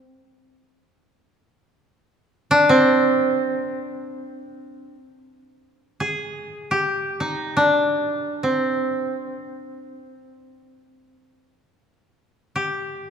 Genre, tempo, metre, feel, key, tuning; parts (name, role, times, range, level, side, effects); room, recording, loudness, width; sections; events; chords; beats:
japanese traditional, Japanese chamber music; free time; C hirajoshi; A4 = 440 Hz
koto; solo; 0.0-13.1 s; C4 to Ab4; -19 LUFS; equal
moderate church reverb, RT60 2.6 s; minimal, uncompressed stereo recording; -19 LUFS; side -7 dB against mid
0.0-4.9 A section; 4.9-13.1 A section
free time